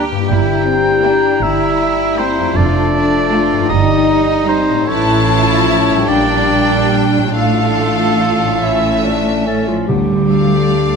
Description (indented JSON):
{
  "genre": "classical",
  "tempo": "46-53 BPM (dotted quarters)",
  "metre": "6/8",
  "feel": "rubato",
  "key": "D minor",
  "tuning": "A4 = 441 Hz",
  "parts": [
    { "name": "warm symphonic violin section", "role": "melody", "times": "0.0-11.0 s", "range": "E5 to Bb5", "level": "-22 LUFS", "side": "left 4 dB", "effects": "none" },
    { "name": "dark clarinet", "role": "second line", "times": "0.0-11.0 s", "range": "C#4 to A4", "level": "-22 LUFS", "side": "equal", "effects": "none" },
    { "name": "mellow large flute ensemble", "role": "second line", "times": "0.0-9.6 s", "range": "E5 to Bb5", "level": "-22 LUFS", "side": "left 1 dB", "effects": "none" },
    { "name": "rich studio violin section", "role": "second line", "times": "0.0-11.0 s", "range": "C#4 to D5", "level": "-24 LUFS", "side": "left 2 dB", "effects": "none" },
    { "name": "rich symphonic viola section", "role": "accompaniment", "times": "0.0-11.0 s", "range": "E3 to Bb3", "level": "-22 LUFS", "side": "right 1 dB", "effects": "none" },
    { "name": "warm bassoon", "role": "accompaniment", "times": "0.0-9.9 s", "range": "G3 to E4", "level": "-23 LUFS", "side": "right 3 dB", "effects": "none" },
    { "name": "concert harp", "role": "arpeggios", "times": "0.0-11.0 s", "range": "F2 to D5", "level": "-22 LUFS", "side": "left 12 dB", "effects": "none" },
    { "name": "rich symphonic cello section", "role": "bass", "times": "0.0-11.0 s", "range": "F3 to G4", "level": "-21 LUFS", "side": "right 4 dB", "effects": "none" },
    { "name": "rich symphonic double bass section", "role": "bass", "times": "0.0-11.0 s", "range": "F1 to D2", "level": "-19 LUFS", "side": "right 5 dB", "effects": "none" },
    { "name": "clear oboe", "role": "second line", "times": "0.3-9.4 s", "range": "A4 to G5", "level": "-19 LUFS", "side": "right 2 dB", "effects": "none" },
    { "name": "mellow French horn section", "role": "sustained chords", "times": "0.3-9.5 s", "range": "A3 to G4", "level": "-19 LUFS", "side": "left 7 dB", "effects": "none" },
    { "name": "timpani", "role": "percussion", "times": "9.9-11.0 s", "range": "D3", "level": "-22 LUFS", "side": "left 1 dB", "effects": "none" }
  ],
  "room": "moderate scoring stage reverb, RT60 2.0 s",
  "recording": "none",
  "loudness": "-11 LUFS",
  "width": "side -5 dB against mid",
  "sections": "0.0-9.9 A section; 9.9-11.0 B section",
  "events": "none",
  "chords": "0.3 Edim/G; 2.6 Dm/F; 3.7 Eb/G; 4.9 A; 6.1 Gm/Bb; 7.4 Dm/A; 9.9 Dm"
}